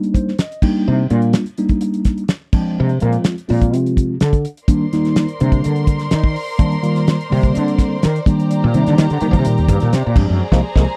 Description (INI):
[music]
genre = electric jazz fusion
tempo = 126 BPM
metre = 4/4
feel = straight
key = C minor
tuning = A4 = 440 Hz
[part]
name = mellow tine electric piano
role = accompaniment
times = 0.0-10.8 s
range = D3 to G5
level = -20 LUFS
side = equal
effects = phaser
[part]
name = damped 70s drum kit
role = drums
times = 0.0-10.9 s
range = crash cymbal, hi-hat, kick drum, snare drum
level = -18 LUFS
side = equal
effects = none
[part]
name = woody fretless electric bass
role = bass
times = 0.9-10.8 s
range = C2 to F3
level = -19 LUFS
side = equal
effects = transformer saturation, analog chorus
[part]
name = dark studio string section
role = sustained chords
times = 4.7-11.0 s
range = G4 to C6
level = -28 LUFS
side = equal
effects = none
[sound]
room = little or no reverb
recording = dry, close 1970s-style studio recording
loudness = -16 LUFS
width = mono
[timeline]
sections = 0.0-11.0 A section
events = tine electric piano fill 0.0-0.9; fretless electric bass solo 0.0-11.0; band accent 10.4-11.0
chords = 0.0 Cm9; 0.6 F13sus4; 2.5 Bb9; 4.7 Cm9; 8.3 F9sus4 (rootless); 10.2 Bb9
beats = 0.38 | 0.86 1.34 1.82 2.29 | 2.77 3.25 3.73 4.20 | 4.68 5.16 5.63 6.11 | 6.59 7.07 7.54 8.02 | 8.50 8.97 9.45 9.93 | 10.40 10.88